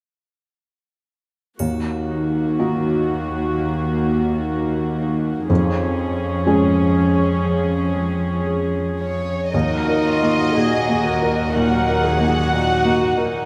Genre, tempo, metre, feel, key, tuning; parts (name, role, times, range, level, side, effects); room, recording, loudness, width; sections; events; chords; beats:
cinematic, emotional film score for orchestra; 61 BPM; 4/4; rubato; A4 = 440 Hz
felt-muted upright piano; accompaniment; 1.6-13.5 s; D#2 to A#4; -25 LUFS; equal
rich studio viola section; accompaniment; 1.6-13.5 s; A#3 to A#4; -26 LUFS; equal
concert harp; arpeggios; 1.6-13.5 s; D#3 to A#5; -29 LUFS; equal
warm studio cello section; bass; 1.6-13.5 s; D#2 to E#2; -25 LUFS; equal
triangle; percussion; 1.6-3.5 s; -44 LUFS; equal
dark studio violin section; melody; 9.0-13.5 s; C#5 to F#5; -25 LUFS; equal
warm studio violin section; second line; 9.5-13.5 s; D#4 to A#4; -27 LUFS; equal
moderate scoring stage reverb, RT60 1.6 s; -19 LUFS; mono
1.6-9.5 A section; 9.5-13.5 B section
1.6 D#m; 5.5 C#/E#; 9.5 D#m
| 1.60 2.60 3.58 4.54 | 5.50 6.46 7.43 8.46 | 9.53 10.55 11.55 12.53